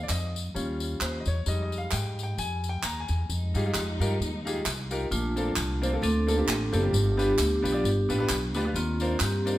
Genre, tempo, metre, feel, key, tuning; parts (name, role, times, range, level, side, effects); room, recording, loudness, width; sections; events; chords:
uptempo gospel; 132 BPM; 4/4; swing 56% on 8ths; Bb major from 5.1 s; A4 = 442 Hz
clear concert grand piano; accompaniment; 0.0-9.5 s; G2 to Bb5; -32 LUFS; left 1 dB
upright bass; bass; 0.0-9.6 s; Gb1 to Ab2; -28 LUFS; equal
handclaps and tambourine; percussion; 0.1-9.6 s; -34 LUFS; equal
warm studio string section; sustained chords; 3.3-5.1 s; F3 to Eb4; -38 LUFS; equal
vibraphone with hard mallets; melody; 5.1-9.6 s; A3 to A4; -28 LUFS; equal
wet stone room reverb, RT60 1.3 s; band playing live in one room; -25 LUFS; side -14 dB against mid
0.0-3.3 A section; 3.3-5.1 B section; 5.1-9.6 C section
grand piano solo 0.0-3.3
0.0 Ab; 0.6 Eb7; 1.5 Fm9; 5.1 Bbmaj9; 6.9 G7; 8.8 Cm11/Eb